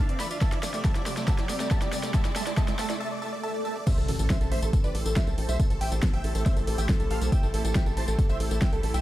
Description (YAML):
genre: uplifting trance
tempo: 139 BPM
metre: 4/4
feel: straight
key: A minor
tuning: A4 = 440 Hz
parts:
  - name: big supersaw lead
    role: melody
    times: 0.0-9.0 s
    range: A4 to B5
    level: -35 LUFS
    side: right 1 dB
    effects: phaser, sidechain pumping, digital delay
  - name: dark baby grand piano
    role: second line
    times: 0.0-9.0 s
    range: A4 to B5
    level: -38 LUFS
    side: left 1 dB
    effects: sidechain pumping
  - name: lush unison pad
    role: sustained chords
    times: 0.1-9.0 s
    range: C3 to E5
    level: -38 LUFS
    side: equal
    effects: chorus, phaser, sidechain pumping
  - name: liquid acid bass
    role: arpeggios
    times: 0.0-3.0 s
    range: A3 to F4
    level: -38 LUFS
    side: right 3 dB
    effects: chorus, sidechain pumping, digital delay
  - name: riser, swell and impact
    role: sound effects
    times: 0.0-5.6 s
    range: none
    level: -34 LUFS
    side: equal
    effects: none
  - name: big-room dance drum kit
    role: drums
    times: 0.1-9.0 s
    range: crash cymbal, hi-hat, snare drum, tambourine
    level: -34 LUFS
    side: equal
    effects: overdrive, sidechain pumping on hats, high-pass filter on hats, studio reverb, high-pass filter on snare, sidechain pumping on perc, high-pass filter on perc, sidechain pumping on cymbals, high-pass filter on cymbals
  - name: electronic kick drum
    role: drums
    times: 0.4-8.7 s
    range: none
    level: -25 LUFS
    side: equal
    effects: studio reverb
  - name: tight sequencer bass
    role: bass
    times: 4.0-9.0 s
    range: A1 to B1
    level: -28 LUFS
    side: equal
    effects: sidechain pumping
room: little or no reverb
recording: dark, warm production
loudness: -24 LUFS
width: side -15 dB against mid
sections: 0.0-3.9 A section; 3.9-9.0 B section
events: build-up 0.0-3.9; drum fill 0.0-3.0; riser 0.0-3.0; break 3.0-3.9; swell 3.0-3.9; drop 3.9-9.0; impact 3.9-5.6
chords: 0.4 C; 3.9 Am7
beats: | 0.42 0.85 1.28 1.71 | 2.14 2.57 3.01 3.44 | 3.87 4.30 4.73 5.16 | 5.60 6.03 6.46 6.89 | 7.32 7.75 8.19 8.62